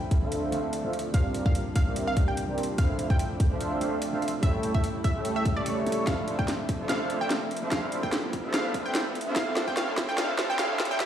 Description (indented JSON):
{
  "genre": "future bass",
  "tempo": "146 BPM",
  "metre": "4/4",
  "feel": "swing 54% on 16ths, half-time",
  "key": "D minor",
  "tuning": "A4 = 441 Hz",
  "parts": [
    { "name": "overdriven tine electric piano", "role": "accompaniment", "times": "0.0-11.1 s", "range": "E3 to A4", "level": "-34 LUFS", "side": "left 1 dB", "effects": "wide subtle chorus, sidechain pumping, dub echo" },
    { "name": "dark studio string section", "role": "sustained chords", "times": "0.0-11.1 s", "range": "C3 to E4", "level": "-40 LUFS", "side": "right 2 dB", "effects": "sidechain pumping" },
    { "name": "riser and noise sweep", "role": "sound effects", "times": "2.4-11.1 s", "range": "none", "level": "-40 LUFS", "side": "right 2 dB", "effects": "none" },
    { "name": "electronic kick drum", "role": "drums", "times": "0.1-11.1 s", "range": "none", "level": "-25 LUFS", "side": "equal", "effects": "none" },
    { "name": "trap drum kit", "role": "drums", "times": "0.1-11.1 s", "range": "hi-hat, snare drum", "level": "-32 LUFS", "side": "equal", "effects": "none" },
    { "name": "soft supersaw", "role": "riff", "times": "0.2-11.1 s", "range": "A3 to C#6", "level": "-32 LUFS", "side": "right 1 dB", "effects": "sidechain pumping, low-pass filter" },
    { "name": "warm 808-style bass", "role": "bass", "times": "0.2-11.1 s", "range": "A1 to A2", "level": "-44 LUFS", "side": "right 1 dB", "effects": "none" },
    { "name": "wide unison pluck", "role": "melody", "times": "1.1-11.1 s", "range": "D5 to G5", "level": "-34 LUFS", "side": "right 1 dB", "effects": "sidechain pumping, dub echo" }
  ],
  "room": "moderate digital room reverb, RT60 0.9 s, digital ambience",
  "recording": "played on a big sound system in a bare room, large studio reverb, high-pass filter",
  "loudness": "-25 LUFS",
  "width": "side -10 dB against mid",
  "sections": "0.0-11.1 A section",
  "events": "build-up 0.0-11.1; filter sweep on supersaw synth 0.0-11.1; filter sweep 0.0-11.1; riser 2.4-11.1; drum fill 6.1-11.1",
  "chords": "0.0 Dm7; 1.1 C7sus4; 2.8 Dm7; 4.4 A7; 6.1 Dm7; 7.7 Csus4; 9.4 Dm7",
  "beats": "0.32 0.73 | 1.14 1.55 1.96 2.37 | 2.78 3.19 3.61 4.02 | 4.43 4.84 5.25 5.66 | 6.07 6.48 6.89 7.30 | 7.72 8.13 8.54 8.95 | 9.36 9.77 10.18 10.59 | 11.00"
}